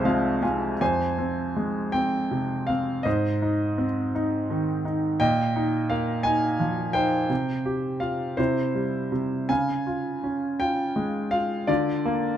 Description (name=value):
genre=classical, lyrical solo piano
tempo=53-58 BPM (dotted quarters)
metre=6/8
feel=rubato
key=F minor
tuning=A4 = 440 Hz
part: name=clear baby grand piano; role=solo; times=0.0-12.4 s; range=C2 to Ab5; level=-23 LUFS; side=equal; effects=none
room=light reverb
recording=close, detailed microphones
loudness=-23 LUFS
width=side -10 dB against mid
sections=0.8-12.4 A section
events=grand piano fill 0.0-0.8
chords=0.0 Fm; 3.1 Ab; 5.2 Bbsus4; 7.3 Csus4; 8.4 C; 9.5 Db; 11.7 Bb/D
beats=| 0.81 1.94 | 3.06 4.15 | 5.21 6.25 | 7.30 8.38 | 9.50 10.60 | 11.69